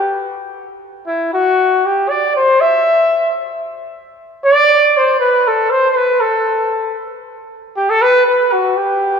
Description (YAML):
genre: mexican folk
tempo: 118 BPM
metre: 3/4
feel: rubato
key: G major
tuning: A4 = 442 Hz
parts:
  - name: mellow trumpet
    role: solo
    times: 0.0-9.2 s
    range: E4 to E5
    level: -12 LUFS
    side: equal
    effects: none
room: wet church reverb, RT60 3.1 s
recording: recorded in a church or concert hall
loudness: -11 LUFS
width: side -6 dB against mid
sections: 0.0-9.2 A section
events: none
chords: none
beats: 0.06 0.56 | 1.07 1.58 2.09 | 2.60 3.12 3.65 | 4.17 4.69 5.20 | 5.71 6.22 6.72 | 7.23 7.74 8.25 | 8.76